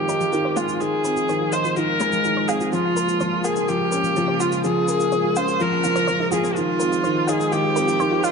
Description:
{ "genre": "piano and strings electronica", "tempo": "125 BPM", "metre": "4/4", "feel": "straight", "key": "unclear", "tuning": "A4 = 440 Hz", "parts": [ { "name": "clear viola", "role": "melody", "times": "0.0-8.3 s", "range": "F4 to C5", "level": "-21 LUFS", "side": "right 1 dB", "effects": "low-pass filter" }, { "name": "lush unison pad", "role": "sustained chords", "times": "0.0-8.3 s", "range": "Db3 to F4", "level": "-27 LUFS", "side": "equal", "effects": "chorus" }, { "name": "warm upright piano", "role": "riff", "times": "0.0-8.3 s", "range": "Eb3 to F4", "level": "-24 LUFS", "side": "left 1 dB", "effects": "none" }, { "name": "analog pluck", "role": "arpeggios", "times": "0.1-8.3 s", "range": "F3 to F5", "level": "-30 LUFS", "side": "right 2 dB", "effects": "chorus, ping-pong delay" }, { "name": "shaker", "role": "drums", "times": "0.1-8.3 s", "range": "none", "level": "-34 LUFS", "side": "left 3 dB", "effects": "none" } ], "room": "moderate lush hall reverb, RT60 1.8 s", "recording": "nothing above 10.7 kHz", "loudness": "-18 LUFS", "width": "side -5 dB against mid", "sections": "0.0-8.3 A section", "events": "build-up 0.0-8.3; filter sweep on synth arpeggio sound 0.0-8.3", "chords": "0.0 Ab6; 2.7 Db6; 4.6 Bbm7; 6.6 Ab6", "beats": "0.33 | 0.81 1.28 1.76 2.25 | 2.73 3.21 3.69 4.17 | 4.64 5.12 5.61 6.08 | 6.57 7.04 7.53 8.01" }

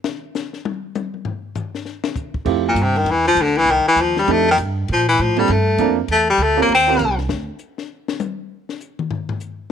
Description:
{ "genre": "jazz, small-group swing and bop", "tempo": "199 BPM", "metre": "4/4", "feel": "swing 62% on 8ths", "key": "F major", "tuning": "A4 = 439 Hz", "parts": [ { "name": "compact cocktail drum kit", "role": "drums", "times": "0.0-9.5 s", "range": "crash cymbal, hi-hat, kick drum, ride cymbal, snare drum, toms", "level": "-28 LUFS", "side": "left 6 dB", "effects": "none" }, { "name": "upright bass", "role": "bass", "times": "2.3-7.5 s", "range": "C2 to Bb2", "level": "-22 LUFS", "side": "right 2 dB", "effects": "none" }, { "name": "warm upright piano", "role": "accompaniment", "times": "2.4-7.0 s", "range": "A3 to Bb4", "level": "-20 LUFS", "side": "right 16 dB", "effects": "none" }, { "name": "clear baritone saxophone", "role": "melody", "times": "2.7-7.2 s", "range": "Bb2 to C4", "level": "-15 LUFS", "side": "left 2 dB", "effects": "none" } ], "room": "light reverb, small room ambience", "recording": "1960s-style stereo with parts hard left and right", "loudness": "-16 LUFS", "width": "side -8 dB against mid", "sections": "0.0-2.5 A section; 2.5-9.7 A section", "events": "baritone saxophone solo 0.0-9.7; drum solo 0.0-2.5, 7.3-9.7", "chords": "0.0 N.C.; 2.5 Fmaj9; 3.7 Cm; 4.3 F13; 4.9 Bbmaj9; 6.1 Em7b5; 6.7 Eb13; 7.3 N.C.", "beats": "| 0.05 0.35 0.65 0.95 | 1.25 1.56 1.86 2.16 | 2.46 2.77 3.07 3.37 | 3.67 3.97 4.28 4.58 | 4.88 5.18 5.49 5.79 | 6.09 6.39 6.69 7.00 | 7.30 7.60 7.90 8.20 | 8.50 8.81 9.11 9.41" }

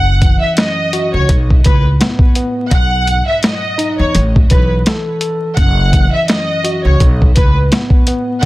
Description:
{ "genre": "hip hop, boom-bap hip-hop", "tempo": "84 BPM", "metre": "4/4", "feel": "swing 57% on 16ths", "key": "unclear", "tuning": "A4 = 440 Hz", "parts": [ { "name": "warm symphonic violin section", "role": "melody", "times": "0.0-8.5 s", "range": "B4 to F#5", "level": "-18 LUFS", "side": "equal", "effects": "high-pass filter, low-pass filter, digital delay" }, { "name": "tine electric piano", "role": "accompaniment", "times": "0.0-8.5 s", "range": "B1 to A4", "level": "-20 LUFS", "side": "equal", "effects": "fast stereo tremolo, cassette tape, high-pass filter, low-pass filter" }, { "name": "upright bass", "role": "bass", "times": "0.0-8.5 s", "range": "F#1 to E2", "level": "-14 LUFS", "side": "equal", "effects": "none" }, { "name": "boom bap sampler-style drum kit", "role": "drums", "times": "0.2-8.5 s", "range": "hi-hat, kick drum, snare drum", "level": "-11 LUFS", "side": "equal", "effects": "none" } ], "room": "light reverb", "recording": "dense, heavily limited modern master, vinyl crackle", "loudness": "-10 LUFS", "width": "side -18 dB against mid", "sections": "0.0-8.5 A section", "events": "none", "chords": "0.0 F#5; 1.3 Aadd9/B; 2.7 Emaj7/B (rootless); 4.1 Asus2; 5.6 F#5; 7.0 Aadd9/B", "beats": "0.57 1.29 2.00 | 2.72 3.43 4.15 4.86 | 5.57 6.29 7.00 7.72 | 8.43" }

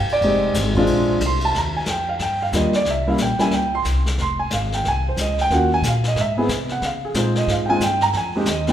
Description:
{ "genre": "jazz piano trio", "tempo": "182 BPM", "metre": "4/4", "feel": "swing 62% on 8ths", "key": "unclear", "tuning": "A4 = 440 Hz", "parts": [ { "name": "warm grand piano", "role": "melody", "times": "0.0-8.7 s", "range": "G3 to C6", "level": "-19 LUFS", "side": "right 1 dB", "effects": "none" }, { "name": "upright bass", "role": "bass", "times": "0.0-8.7 s", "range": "F1 to Db3", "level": "-23 LUFS", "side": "equal", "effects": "none" }, { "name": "vintage brush drum kit", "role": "drums", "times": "0.1-8.7 s", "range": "brushed snare drum, hi-hat, kick drum, ride cymbal, snare drum", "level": "-28 LUFS", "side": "left 2 dB", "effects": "none" } ], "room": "wet recital hall reverb, RT60 1.6 s", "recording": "recorded in a church or concert hall", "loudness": "-17 LUFS", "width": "side -10 dB against mid", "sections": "0.0-1.5 A section; 1.5-8.7 A section", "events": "grand piano solo 0.0-8.7", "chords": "0.0 Fm7; 0.9 Bb7; 1.5 Ebmaj9; 2.9 C7b9; 4.2 Fm; 5.5 Ebm7; 6.2 Abaug; 6.8 Dbmaj9; 8.1 Fm7", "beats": "| 0.23 0.56 0.88 1.21 | 1.54 1.87 2.20 2.53 | 2.86 3.19 3.52 3.85 | 4.18 4.51 4.84 5.17 | 5.50 5.83 6.16 6.49 | 6.82 7.15 7.48 7.81 | 8.14 8.47" }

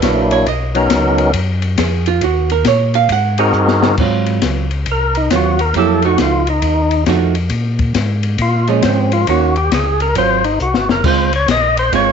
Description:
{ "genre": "soul jazz organ trio", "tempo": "136 BPM", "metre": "4/4", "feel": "swing 65% on 8ths", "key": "Ab mixolydian from 4.0 s", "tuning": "A4 = 439 Hz", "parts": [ { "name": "percussive tonewheel organ", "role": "melody", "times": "0.0-12.1 s", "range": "Gb3 to Eb5", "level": "-15 LUFS", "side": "left 1 dB", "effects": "slow rotary speaker, overdrive, slapback echo" }, { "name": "archtop guitar, miked and amplified", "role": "accompaniment", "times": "0.0-12.1 s", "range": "Eb3 to Gb5", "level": "-16 LUFS", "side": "right 14 dB", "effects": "none" }, { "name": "mellow tonewheel organ", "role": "bass", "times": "0.0-12.1 s", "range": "Gb1 to Bb2", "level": "-17 LUFS", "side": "left 1 dB", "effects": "slow rotary speaker" }, { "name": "open jazz drum kit", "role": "drums", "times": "0.0-12.1 s", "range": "crash cymbal, hi-hat, kick drum, ride cymbal, snare drum", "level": "-20 LUFS", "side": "left 6 dB", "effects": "none" } ], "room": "light reverb, studio ambience", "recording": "1960s-style stereo with parts hard left and right, nothing above 7.8 kHz", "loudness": "-12 LUFS", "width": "side -7 dB against mid", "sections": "0.0-4.0 A section; 4.0-12.1 A section", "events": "hollow-body jazz guitar solo 0.0-4.0; drum fill 3.5-4.0, 10.6-11.0; tonewheel organ solo 4.0-12.1", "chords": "0.5 Cbmaj9; 2.2 Eb5; 3.1 Ab9; 4.0 Ab6; 5.7 F7b9; 7.5 Bbm7; 9.3 Ebm7; 10.2 Ab6; 11.0 Dbmaj7", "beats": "0.02 | 0.46 0.90 1.34 1.78 | 2.22 2.66 3.10 3.54 | 3.99 4.43 4.87 5.31 | 5.75 6.19 6.63 7.07 | 7.51 7.95 8.39 8.83 | 9.27 9.71 10.15 10.60 | 11.04 11.48 11.92" }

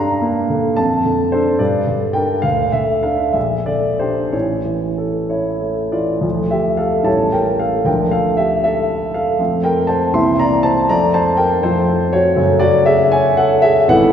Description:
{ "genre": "classical, romantic character piece for solo piano", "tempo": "60-82 BPM (dotted quarters)", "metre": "6/8", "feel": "rubato", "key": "D minor", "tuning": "A4 = 441 Hz", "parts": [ { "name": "warm grand piano", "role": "solo", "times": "0.0-14.1 s", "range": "G#1 to C6", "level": "-14 LUFS", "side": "equal", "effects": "none" } ], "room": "wet scoring stage reverb, RT60 1.8 s", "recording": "recorded in a church or concert hall", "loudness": "-14 LUFS", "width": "side -8 dB against mid", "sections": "0.0-6.2 A section; 6.2-14.1 B section", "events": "none", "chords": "0.0 Gm; 0.8 Dm/F; 1.6 Gm; 2.4 D5; 3.3 Gm/Bb; 4.3 A; 6.2 Dm; 7.1 A7; 7.9 Dm; 9.4 F; 10.1 C7; 10.9 F; 12.4 F#m", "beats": "| 0.78 1.59 | 2.44 3.35 | 4.33 5.29 | 6.24 7.07 | 7.87 8.64 | 9.39 10.15 | 10.89 11.63 | 12.38 13.13 | 13.90" }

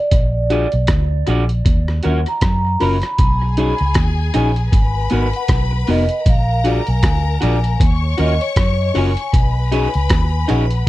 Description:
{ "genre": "lovers rock reggae", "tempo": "78 BPM", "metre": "4/4", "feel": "swing 58% on 16ths", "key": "unclear", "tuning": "A4 = 440 Hz", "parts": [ { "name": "vibraphone with soft mallets", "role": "melody", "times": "0.0-10.9 s", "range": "C#5 to B5", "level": "-23 LUFS", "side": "equal", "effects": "tape echo" }, { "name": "vintage muted fingered electric bass", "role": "bass", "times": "0.1-10.8 s", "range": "E#1 to F#2", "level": "-17 LUFS", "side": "equal", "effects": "none" }, { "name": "trip hop sampler-style drum kit", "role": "drums", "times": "0.1-10.9 s", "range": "hi-hat, kick drum, rim click", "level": "-16 LUFS", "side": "equal", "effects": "none" }, { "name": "mellow tine electric piano", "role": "accompaniment", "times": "0.5-10.6 s", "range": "B3 to A#4", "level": "-21 LUFS", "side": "left 4 dB", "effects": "phaser" }, { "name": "electric guitar through a small old amp", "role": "stabs", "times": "0.5-10.6 s", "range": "B3 to D5", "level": "-22 LUFS", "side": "right 3 dB", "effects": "none" }, { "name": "warm studio string section", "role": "second line", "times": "3.2-10.9 s", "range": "G#4 to C#6", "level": "-26 LUFS", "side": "left 5 dB", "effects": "none" } ], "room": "little or no reverb", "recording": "dry, close 1970s-style studio recording", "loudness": "-14 LUFS", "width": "side -16 dB against mid", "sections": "0.0-10.9 A section", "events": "none", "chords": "0.1 A#7b13; 1.7 D#m7; 3.2 B69; 4.7 G#m9; 6.3 A#7b13; 7.8 D#m7; 9.3 B69", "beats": "| 0.12 0.89 1.66 2.42 | 3.19 3.96 4.72 5.49 | 6.26 7.03 7.80 8.56 | 9.33 10.10 10.87" }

